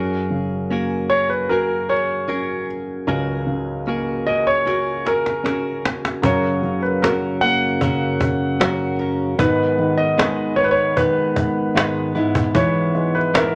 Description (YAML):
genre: pop ballad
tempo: 76 BPM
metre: 4/4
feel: straight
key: unclear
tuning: A4 = 442 Hz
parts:
  - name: dark grand piano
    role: accompaniment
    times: 0.0-13.6 s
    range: C#2 to F#4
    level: -26 LUFS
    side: equal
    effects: none
  - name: direct-recorded clean electric guitar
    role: arpeggios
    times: 0.0-13.6 s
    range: G#2 to B4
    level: -28 LUFS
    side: equal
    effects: none
  - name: warm concert grand piano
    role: melody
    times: 1.1-13.6 s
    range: A#4 to F#5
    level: -22 LUFS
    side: equal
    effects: none
  - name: cajon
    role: drums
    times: 4.7-13.5 s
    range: none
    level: -24 LUFS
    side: equal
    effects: none
  - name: percussive tonewheel organ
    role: sustained chords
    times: 6.2-13.6 s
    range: F#2 to B3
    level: -27 LUFS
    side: equal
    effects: slow rotary speaker
room: moderate studio reverb, RT60 0.8 s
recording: none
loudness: -20 LUFS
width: mono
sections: 0.0-6.2 A section; 6.2-13.6 B section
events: drum fill 4.7-6.2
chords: 0.0 F#add9; 6.2 F#; 9.4 G#m; 12.2 E/G#